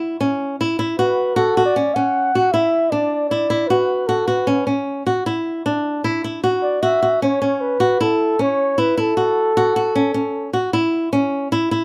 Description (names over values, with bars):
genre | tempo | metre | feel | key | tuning
contemporary instrumental, contemporary | 154 BPM | 7/4 | straight | F# minor | A4 = 440 Hz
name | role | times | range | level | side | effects
flamenco guitar | arpeggios | 0.0-11.8 s | C#4 to F#4 | -21 LUFS | equal | none
breathy flugelhorn | melody | 1.0-10.5 s | A4 to F#5 | -21 LUFS | equal | none
room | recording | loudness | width
moderate small room reverb, RT60 0.5 s | none | -19 LUFS | mono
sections
0.0-11.8 A section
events
none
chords
0.0 F#7(no3); 1.4 Bmadd9 (rootless); 6.8 F#m7